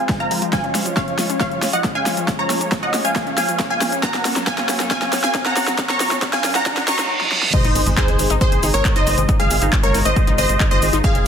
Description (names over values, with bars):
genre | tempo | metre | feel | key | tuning
uplifting trance | 137 BPM | 4/4 | straight | Ab mixolydian | A4 = 436 Hz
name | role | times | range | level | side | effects
supersaw stab | melody | 0.0-11.3 s | Ab4 to Db6 | -21 LUFS | equal | sidechain pumping, low-pass filter, dub echo
wide unison pluck | second line | 0.0-11.3 s | C5 to Db6 | -27 LUFS | right 1 dB | phaser, sidechain pumping, tape echo
lush unison pad | sustained chords | 0.0-11.3 s | C3 to Db5 | -29 LUFS | equal | chorus, sidechain pumping
wide unison pluck | arpeggios | 0.0-11.2 s | F3 to Eb4 | -28 LUFS | moving between left 6 dB and right 2 dB | auto-pan, sidechain pumping, tape echo
riser, reverse cymbal and sub drop | sound effects | 0.0-9.3 s | none | -27 LUFS | right 2 dB | none
big-room dance drum kit | drums | 0.1-11.2 s | crash cymbal, handclaps, hi-hat, shaker, snare drum | -22 LUFS | equal | overdrive
electronic kick drum | drums | 0.1-11.1 s | none | -20 LUFS | equal | none
tight sequencer bass | bass | 7.6-11.2 s | F1 to Bb1 | -21 LUFS | equal | sidechain pumping
room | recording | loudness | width
light reverb, digital ambience | dense, heavily limited modern master, high-pass filter | -16 LUFS | side -8 dB against mid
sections
0.0-7.5 A section; 7.5-11.3 B section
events
build-up 0.0-7.5; drum fill 0.0-7.1, 7.2-7.5; filter sweep on supersaw synth 0.0-7.5; filter sweep on synth arpeggio sound 0.0-7.5; filter sweep 0.0-7.5; reverse cymbal 6.7-7.5; drop 7.5-11.3; impact 7.5-9.3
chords
0.0 Fm; 0.5 Db; 4.0 Gb; 7.5 Ab